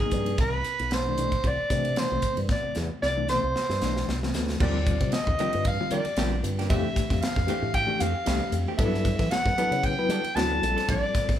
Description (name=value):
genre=electric jazz fusion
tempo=114 BPM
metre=4/4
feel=swing 54% on 16ths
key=C major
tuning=A4 = 438 Hz
part: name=warm soprano saxophone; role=melody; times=0.0-11.4 s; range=Ab4 to A5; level=-28 LUFS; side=equal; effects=none
part: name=reed electric piano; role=accompaniment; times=0.0-11.4 s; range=B2 to B4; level=-31 LUFS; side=left 3 dB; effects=fast tremolo
part: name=fingered electric bass with an envelope filter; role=bass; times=0.0-11.4 s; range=Bb1 to G3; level=-30 LUFS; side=equal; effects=none
part: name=crisp fusion drum kit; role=drums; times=0.0-11.4 s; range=crash cymbal, hi-hat, kick drum, ride cymbal, snare drum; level=-29 LUFS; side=equal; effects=none
part: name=direct-recorded clean electric guitar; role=stabs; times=4.6-11.3 s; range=E3 to A4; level=-36 LUFS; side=right 5 dB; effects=none
room=moderate large studio reverb, RT60 1.1 s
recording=band playing live in one room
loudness=-23 LUFS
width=side -10 dB against mid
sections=0.0-4.6 A section; 4.6-11.4 B section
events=drum fill 2.5-4.6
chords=0.4 Cmaj9; 4.6 Ebmaj9; 6.7 Fmaj9; 8.8 Gmaj9; 10.6 Bbmaj9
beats=| 0.39 0.91 1.44 1.97 | 2.49 3.02 3.55 4.07 | 4.60 5.12 5.65 6.17 | 6.70 7.22 7.75 8.27 | 8.79 9.32 9.84 10.36 | 10.89